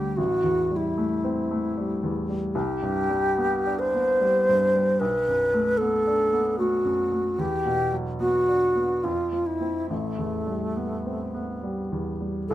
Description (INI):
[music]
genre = classical, impressionist duo for alto flute and grand piano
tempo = 69-77 BPM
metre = 3/4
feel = rubato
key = A dorian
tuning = A4 = 435 Hz
[part]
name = alto flute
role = melody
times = 0.0-12.5 s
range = A3 to C5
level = -23 LUFS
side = equal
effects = none
[part]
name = clear baby grand piano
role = accompaniment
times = 0.0-12.5 s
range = G1 to E4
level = -28 LUFS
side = equal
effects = none
[sound]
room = light reverb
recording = none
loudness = -22 LUFS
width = side -14 dB against mid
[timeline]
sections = 0.0-12.5 A section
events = none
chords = 0.2 Am7; 2.6 Csus2; 5.0 Bm7; 7.4 Em9; 9.1 F5; 9.9 Am9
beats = | 0.18 0.97 1.76 | 2.55 3.37 4.21 | 5.00 5.79 6.60 | 7.40 8.22 9.05 | 9.91 10.78 11.64 | 12.50